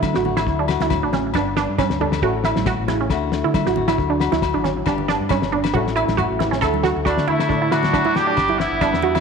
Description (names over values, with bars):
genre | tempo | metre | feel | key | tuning
highlife guitar band | 136 BPM | 4/4 | swing 54% on 16ths | D major | A4 = 440 Hz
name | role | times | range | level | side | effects
nylon-string guitar | accompaniment | 0.0-9.2 s | F#2 to A4 | -26 LUFS | left 10 dB | none
resonant blip pluck | arpeggios | 0.0-9.2 s | C#4 to A4 | -22 LUFS | right 9 dB | chorus, tape echo
fingered electric bass | bass | 0.0-9.2 s | G1 to D3 | -26 LUFS | equal | none
cloth-damped thuddy drum kit | drums | 0.0-9.2 s | kick drum, snare drum, toms | -25 LUFS | left 4 dB | none
agogo bells | percussion | 0.0-9.2 s | none | -28 LUFS | left 12 dB | none
congas | percussion | 0.0-9.1 s | none | -31 LUFS | right 10 dB | none
clear horn section | melody | 7.1-9.2 s | D4 to G4 | -20 LUFS | right 3 dB | tape echo
brilliant trumpet | second line | 7.1-9.2 s | A3 to D4 | -28 LUFS | left 10 dB | none
room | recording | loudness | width
moderate echo chamber reverb, RT60 1.7 s | 1960s-style stereo with parts hard left and right | -17 LUFS | side -6 dB against mid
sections
0.0-6.6 A section; 6.6-9.2 B section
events
drum fill 5.7-6.6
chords
0.0 Dadd9; 1.3 G; 2.2 A; 3.1 Dadd9; 4.9 G; 5.7 A; 6.6 Dadd9; 8.4 G